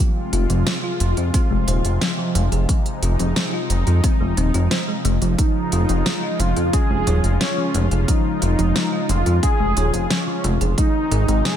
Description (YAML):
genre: synthwave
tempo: 89 BPM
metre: 4/4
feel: straight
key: unclear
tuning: A4 = 440 Hz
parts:
  - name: lush unison pad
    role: sustained chords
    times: 0.0-11.6 s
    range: C3 to F4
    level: -26 LUFS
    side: left 1 dB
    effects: chorus, phaser, sidechain pumping
  - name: thumb-piano-like synth pluck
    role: arpeggios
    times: 0.0-11.6 s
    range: F3 to Db5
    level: -27 LUFS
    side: left 2 dB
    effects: chorus, vintage 12-bit sampler grit, tape echo
  - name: chorused synth bass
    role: bass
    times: 0.3-11.4 s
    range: Eb1 to F2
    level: -19 LUFS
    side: equal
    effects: sidechain pumping
  - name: pop drum kit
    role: drums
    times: 0.3-11.6 s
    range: hi-hat, snare drum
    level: -25 LUFS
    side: equal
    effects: small room ambience
  - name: electronic kick drum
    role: drums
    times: 1.3-10.9 s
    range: none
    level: -19 LUFS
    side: equal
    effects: small room ambience
  - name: wide unison lead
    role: melody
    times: 5.4-11.6 s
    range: Db4 to Ab4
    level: -23 LUFS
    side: equal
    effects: lush chorus, tape echo
room: light reverb, digital ambience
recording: none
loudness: -17 LUFS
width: side -10 dB against mid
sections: 0.0-11.6 A section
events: none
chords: 0.0 Fm; 5.4 Db; 10.8 Ab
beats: 0.67 1.34 2.02 | 2.69 3.36 4.04 4.71 | 5.38 6.06 6.73 7.41 | 8.08 8.76 9.43 10.10 | 10.78 11.45